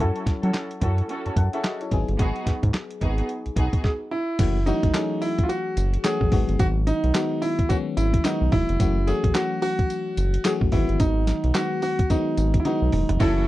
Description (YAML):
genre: R&B, new jack swing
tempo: 109 BPM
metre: 4/4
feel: swing 60% on 16ths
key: unclear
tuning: A4 = 445 Hz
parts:
  - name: FM electric piano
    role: accompaniment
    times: 0.0-13.5 s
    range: D#3 to A5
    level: -29 LUFS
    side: left 6 dB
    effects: chorus, low-pass filter
  - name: muted studio string section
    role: stabs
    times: 0.0-3.8, 13.2-13.4 s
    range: B3 to A4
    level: -30 LUFS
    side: right 2 dB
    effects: low-pass filter, slapback echo
  - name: round analog bass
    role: bass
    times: 0.0-13.5 s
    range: E1 to F#3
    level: -23 LUFS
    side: equal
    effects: none
  - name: dusty soul sampler-style drum kit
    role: drums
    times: 0.2-13.4 s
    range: crash cymbal, handclaps, hi-hat, kick drum, snare drum, tambourine, toms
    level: -23 LUFS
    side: equal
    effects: none
  - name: clear concert grand piano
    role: melody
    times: 3.8-13.5 s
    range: D#4 to G#4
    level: -25 LUFS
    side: right 2 dB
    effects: slapback echo
room: little or no reverb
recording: dry, close 1970s-style studio recording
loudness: -20 LUFS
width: side -16 dB against mid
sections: 0.0-4.4 A section; 4.4-13.5 B section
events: filter sweep 0.0-4.4; drum fill 12.7-13.2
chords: 0.0 F#m7; 1.9 G#m7; 4.4 F#m7; 6.3 G#m7; 8.8 F#m7; 10.7 G#m7